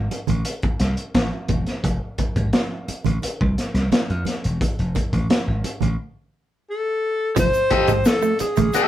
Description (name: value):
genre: funk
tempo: 87 BPM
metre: 4/4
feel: straight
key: F mixolydian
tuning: A4 = 440 Hz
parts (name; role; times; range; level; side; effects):
- slap bass; bass; 0.0-8.8 s; E1 to F2; -22 LUFS; equal; none
- crunchy breakbeat drum kit; drums; 0.1-8.9 s; hi-hat, kick drum, snare drum; -22 LUFS; equal; none
- congas; percussion; 0.1-8.9 s; none; -28 LUFS; right 7 dB; none
- breathy alto saxophone; melody; 6.7-8.9 s; Ab4 to C5; -20 LUFS; left 2 dB; none
- clean electric guitar; riff; 7.4-8.8 s; F3 to A3; -24 LUFS; right 6 dB; none
- egg shaker; percussion; 7.4-8.9 s; none; -37 LUFS; left 6 dB; none
- electric guitar at the edge of break-up; accompaniment; 7.7-8.9 s; G4 to Eb5; -19 LUFS; left 3 dB; none
room: light reverb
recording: band playing live in one room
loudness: -19 LUFS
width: side -12 dB against mid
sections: 0.0-7.4 A section; 7.4-8.9 B section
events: break 6.0-7.4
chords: 0.0 F; 7.4 F9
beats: 0.46 1.15 | 1.84 2.54 3.23 3.92 | 4.61 5.30 5.99 6.68 | 7.37 8.05 8.74